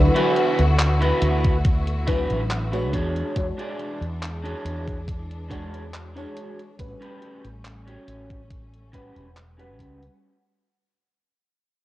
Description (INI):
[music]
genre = vaporwave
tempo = 70 BPM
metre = 4/4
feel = straight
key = unclear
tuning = A4 = 441 Hz
[part]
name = FM electric piano with soft pad layer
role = accompaniment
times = 0.0-10.2 s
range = F#3 to F#5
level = -29 LUFS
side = left 1 dB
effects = phaser, ensemble chorus, cassette tape, analog delay, plate reverb
[part]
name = clear symphonic string section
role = sustained chords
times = 0.0-10.2 s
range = D3 to F#4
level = -30 LUFS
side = left 2 dB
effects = cassette tape, plate reverb
[part]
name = mellow fretless electric bass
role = bass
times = 0.0-10.1 s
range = E1 to E2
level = -24 LUFS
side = equal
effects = tube saturation
[part]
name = electric guitar at the edge of break-up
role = riff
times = 0.1-10.0 s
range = C#4 to D5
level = -28 LUFS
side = right 2 dB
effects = lush chorus, vintage 12-bit sampler grit, low-pass filter, cassette tape, analog delay
[part]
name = detuned 8-bit digital drum machine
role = drums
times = 0.2-10.2 s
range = handclaps, hi-hat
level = -30 LUFS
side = equal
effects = none
[part]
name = electronic kick drum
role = drums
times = 1.4-10.0 s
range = none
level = -23 LUFS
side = equal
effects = none
[sound]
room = moderate booth ambience, RT60 0.2 s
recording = home recording on cassette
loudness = -21 LUFS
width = side -15 dB against mid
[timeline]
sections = 0.0-10.2 A section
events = fade-out 0.0-10.2; filter sweep on clean electric guitar 0.0-10.2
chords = 0.0 D69; 2.9 E13; 6.8 A13